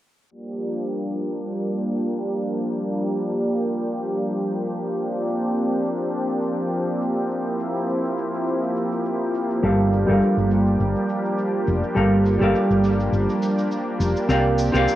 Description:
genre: sunset chillout.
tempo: 103 BPM.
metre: 4/4.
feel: swing 55% on 16ths.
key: G dorian.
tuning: A4 = 440 Hz.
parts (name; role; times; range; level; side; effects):
lush unison pad; sustained chords; 0.3-15.0 s; F3 to G4; -23 LUFS; equal; chorus, cassette tape.
shaker; drums; 0.3-15.0 s; none; -43 LUFS; left 1 dB; cassette tape.
hollow-body jazz guitar; accompaniment; 9.6-15.0 s; G3 to F5; -21 LUFS; right 1 dB; auto-pan, cassette tape, analog delay.
woody fretless electric bass; bass; 9.6-14.8 s; F1 to C2; -22 LUFS; left 1 dB; ensemble chorus.
room: wet studio ambience, RT60 0.5 s.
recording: home recording on cassette, low-pass filter.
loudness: -20 LUFS.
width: side -13 dB against mid.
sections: 0.3-15.0 A section.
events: filter sweep 0.3-15.0.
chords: 0.3 Gm7; 5.0 C9sus4; 9.6 Gm7; 14.3 C9sus4.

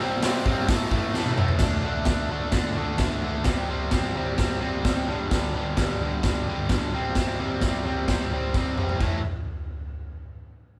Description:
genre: garage rock duo or trio.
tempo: 130 BPM.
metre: 4/4.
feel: straight.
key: A minor.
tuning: A4 = 440 Hz.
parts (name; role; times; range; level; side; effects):
crunchy overdriven guitar; riff; 0.0-9.2 s; G2 to D4; -29 LUFS; equal; none.
raw garage drum kit; drums; 0.2-9.1 s; crash cymbal, hi-hat, kick drum, snare drum, toms; -28 LUFS; equal; none.
room: light reverb.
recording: band playing live in one room.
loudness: -25 LUFS.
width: mono.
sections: 0.0-1.6 A section; 1.6-9.0 B section; 9.0-10.8 C section.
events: drum fill 1.2-1.6, 8.5-9.0.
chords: 0.0 C5; 0.7 A5; 1.6 D5; 3.5 C5; 5.1 G5; 6.9 C5; 9.0 A5.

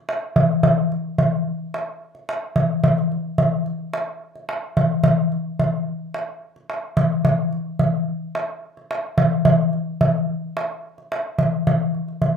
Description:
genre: arabic.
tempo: 109 BPM.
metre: 4/4.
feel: straight.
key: none.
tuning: none.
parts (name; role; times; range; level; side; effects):
darbuka; percussion; 0.1-12.3 s; none; -19 LUFS; equal; none.
room: moderate small room ambience, RT60 0.5 s.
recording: minimal, uncompressed stereo recording.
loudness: -19 LUFS.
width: side -7 dB against mid.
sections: 0.0-12.4 A section.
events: none.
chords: none.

